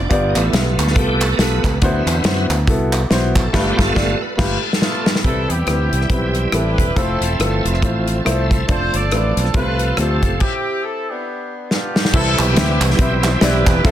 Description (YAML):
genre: uptempo gospel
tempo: 140 BPM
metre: 4/4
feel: swing 58% on 8ths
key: C major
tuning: A4 = 441 Hz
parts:
  - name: bright tonewheel organ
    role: sustained chords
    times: 0.0-13.9 s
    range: Eb3 to E5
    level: -24 LUFS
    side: right 2 dB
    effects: slow rotary speaker, chorus vibrato
  - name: fingered electric bass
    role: bass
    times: 0.0-13.9 s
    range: E1 to F#2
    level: -20 LUFS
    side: equal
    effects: none
  - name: warm upright piano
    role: accompaniment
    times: 0.1-13.9 s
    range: G2 to E5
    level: -22 LUFS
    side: left 1 dB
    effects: none
  - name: natural country drum kit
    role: drums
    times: 0.1-13.9 s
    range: crash cymbal, hi-hat, kick drum, rim click, snare drum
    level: -19 LUFS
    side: equal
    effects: soft clipping on snare
  - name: group handclap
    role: percussion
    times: 0.4-3.4, 12.4-13.8 s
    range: none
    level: -26 LUFS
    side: right 4 dB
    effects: none
  - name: warm horn section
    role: melody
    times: 4.8-13.9 s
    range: A3 to D5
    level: -22 LUFS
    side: equal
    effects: none
room: light reverb, studio ambience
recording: dense, heavily limited modern master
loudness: -15 LUFS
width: side -11 dB against mid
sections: 0.0-5.2 A section; 5.2-12.1 B section; 12.1-13.9 C section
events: tonewheel organ solo 0.0-5.2; band accent 3.5-5.2; drum fill 4.4-5.2, 11.7-12.1; stop 10.4-12.1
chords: 0.1 G7; 1.8 D13; 3.5 G9; 5.2 Cmaj7; 7.0 Fmaj7; 8.7 Dm7/F; 9.6 F/C; 10.4 C; 11.3 G; 12.1 Cmaj7